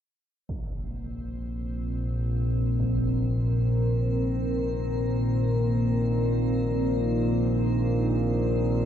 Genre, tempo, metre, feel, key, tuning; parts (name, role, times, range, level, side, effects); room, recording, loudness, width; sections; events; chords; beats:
dark ambient drone; free time; A4 = 440 Hz
deep dark ambient pad; sustained chords; 1.6-8.9 s; C4 to Bb4; -29 LUFS; equal; chorus, built-in reverb, shimmer reverb
analog drone; drone; 0.8-8.9 s; Bb1 to Bb2; -25 LUFS; equal; chorus
impact; percussion; 0.5-3.0 s; -39 LUFS; equal; low-pass filter on sfx
icy glass pad; texture; 1.0-8.9 s; C4 to C5; -45 LUFS; right 2 dB; chorus, built-in reverb, shimmer reverb
wet cathedral reverb, RT60 5.6 s; -24 LUFS; side -9 dB against mid
0.5-8.9 A section
fade-in on ambient pad 0.5-8.9
0.5 Bbsus2
free time